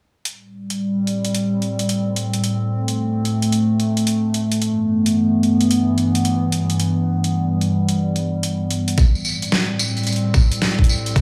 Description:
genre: glitch hop.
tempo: 110 BPM.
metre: 4/4.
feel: swing 64% on 16ths.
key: A minor.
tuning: A4 = 440 Hz.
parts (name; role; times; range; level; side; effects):
warbly tape-like pad; sustained chords; 0.7-11.2 s; G2 to C4; -21 LUFS; equal; chorus, built-in reverb, sidechain pumping.
dubstep drum kit; drums; 0.3-11.2 s; hi-hat, snare drum; -27 LUFS; equal; overdrive.
electronic kick drum; drums; 9.0-11.2 s; none; -16 LUFS; equal; overdrive.
tambourine; percussion; 9.0-11.2 s; none; -28 LUFS; equal; none.
room: little or no reverb.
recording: studio reverb.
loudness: -19 LUFS.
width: mono.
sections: 0.3-11.2 A section.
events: none.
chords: 0.3 Am7; 4.6 G69; 9.0 Am7.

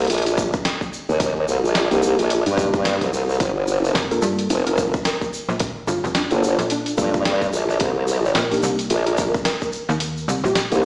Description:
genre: glitch hop.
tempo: 109 BPM.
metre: 4/4.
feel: swing 59% on 16ths.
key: unclear.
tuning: A4 = 440 Hz.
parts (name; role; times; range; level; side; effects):
formant-sweep wobble bass; bass; 0.0-10.8 s; F1 to G2; -19 LUFS; equal; chorus.
boom bap sampler-style drum kit; drums; 0.0-10.8 s; hi-hat, snare drum; -24 LUFS; equal; none.
egg shaker; percussion; 0.1-10.8 s; none; -32 LUFS; equal; none.
electronic kick drum; drums; 0.4-9.7 s; none; -24 LUFS; equal; none.
mellow tine electric piano; stabs; 1.9-10.8 s; Bb3 to A4; -24 LUFS; equal; medium stereo tremolo, sidechain pumping, digital delay.
woody wave-folded pluck; melody; 3.9-10.6 s; D4 to Bb4; -26 LUFS; equal; ensemble chorus, digital delay.
slap-like FM bass; bass; 3.9-10.7 s; F1 to G2; -23 LUFS; equal; none.
room: light reverb, digital ambience.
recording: played on a big sound system in a bare room, stone room reverb, small speaker sound.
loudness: -18 LUFS.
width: side -29 dB against mid.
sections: 0.0-10.8 A section.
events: kick drops out 10.0-10.8.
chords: 0.0 Cm7; 3.4 Gm7; 7.8 Cm7.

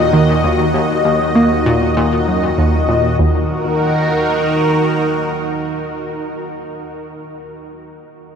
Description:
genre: ambient, sequencer-driven space music.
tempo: 98 BPM.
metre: 4/4.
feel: straight.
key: Eb minor.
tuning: A4 = 440 Hz.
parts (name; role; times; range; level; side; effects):
lush unison pad; sustained chords; 0.0-6.4 s; Eb2 to Eb5; -16 LUFS; equal; chorus, phaser.
analog pluck; riff; 0.0-3.5 s; Eb2 to Bb3; -16 LUFS; equal; chorus, ping-pong delay.
room: wet huge ambient reverb, RT60 9.0 s.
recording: none.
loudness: -13 LUFS.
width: side -7 dB against mid.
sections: 0.0-3.2 A section; 3.2-5.6 B section.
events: none.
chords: 0.0 Ebm.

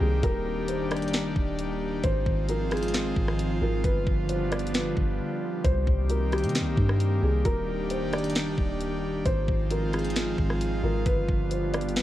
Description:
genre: hip hop, atmospheric cloud-rap.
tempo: 133 BPM.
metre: 4/4.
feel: half-time.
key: unclear.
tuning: A4 = 439 Hz.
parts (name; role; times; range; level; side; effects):
felt-muted upright piano; melody; 0.0-12.0 s; G4 to D5; -32 LUFS; left 1 dB; cassette tape, tape echo.
airy breathy pad; sustained chords; 0.0-12.0 s; D3 to G4; -29 LUFS; equal; chorus, sidechain pumping, cassette tape.
soft 808-style bass; bass; 0.0-12.0 s; Eb1 to C3; -29 LUFS; equal; none.
trap drum kit; drums; 0.2-12.0 s; hi-hat, kick drum, rim click, snare drum; -28 LUFS; equal; cassette tape.
room: little or no reverb.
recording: home recording on cassette.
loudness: -24 LUFS.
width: side -14 dB against mid.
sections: 0.0-12.0 A section.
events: break 5.2-5.6.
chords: 0.2 Ebmaj7; 2.0 Ab6; 3.8 G7; 5.6 Cm7; 7.5 Ebmaj7; 9.3 Ab6; 11.1 G7.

